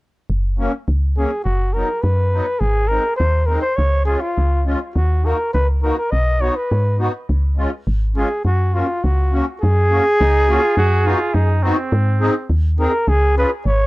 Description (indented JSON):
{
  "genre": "alpine folk, alpine dance band",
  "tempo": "103 BPM",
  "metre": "2/4",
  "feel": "straight",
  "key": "F# major",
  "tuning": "A4 = 440 Hz",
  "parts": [
    { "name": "woody FM bass", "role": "bass", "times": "0.3-13.9 s", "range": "F#1 to G#2", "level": "-16 LUFS", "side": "equal", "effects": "none" },
    { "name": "musette accordion", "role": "accompaniment", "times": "0.6-13.5 s", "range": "F#3 to G#4", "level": "-22 LUFS", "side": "left 1 dB", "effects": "none" },
    { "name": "warm flugelhorn", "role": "melody", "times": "1.2-13.9 s", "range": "E#4 to D#5", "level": "-19 LUFS", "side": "equal", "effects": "tape echo" },
    { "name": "warm trumpet", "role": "second line", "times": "10.2-12.5 s", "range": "B#3 to F#4", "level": "-23 LUFS", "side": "right 3 dB", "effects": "none" }
  ],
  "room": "little or no reverb",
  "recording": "dry, gritty hardware recording",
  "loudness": "-15 LUFS",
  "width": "side -20 dB against mid",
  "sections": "0.3-9.6 A section; 9.6-13.9 A section",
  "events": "none",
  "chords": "0.3 F#; 1.5 B/F#; 2.6 G#; 3.8 C#; 5.0 D#m; 6.1 B; 7.3 C#; 8.4 F#; 10.8 B/F#; 11.9 G#; 13.1 C#",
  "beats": "| 0.30 0.88 | 1.47 2.04 | 2.62 3.20 | 3.79 4.37 | 4.96 5.54 | 6.12 6.71 | 7.29 7.86 | 8.45 9.03 | 9.62 10.20 | 10.78 11.35 | 11.93 12.51 | 13.08 13.66"
}